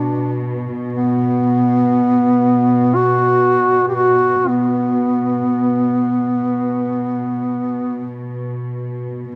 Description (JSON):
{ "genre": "caucasian folk, Caucasian lament", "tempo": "free time", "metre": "none", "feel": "none", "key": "B minor", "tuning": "A4 = 439 Hz", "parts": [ { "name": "dark duduk", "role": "melody", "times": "0.0-8.2 s", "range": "B3 to G4", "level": "-17 LUFS", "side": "equal", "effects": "none" }, { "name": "dark studio string section", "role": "drone", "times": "0.0-9.3 s", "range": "B2", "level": "-26 LUFS", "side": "equal", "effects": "none" } ], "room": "moderate scoring stage reverb, RT60 1.9 s", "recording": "dark, warm production", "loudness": "-17 LUFS", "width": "mono", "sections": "0.0-9.3 A section", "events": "none", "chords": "none" }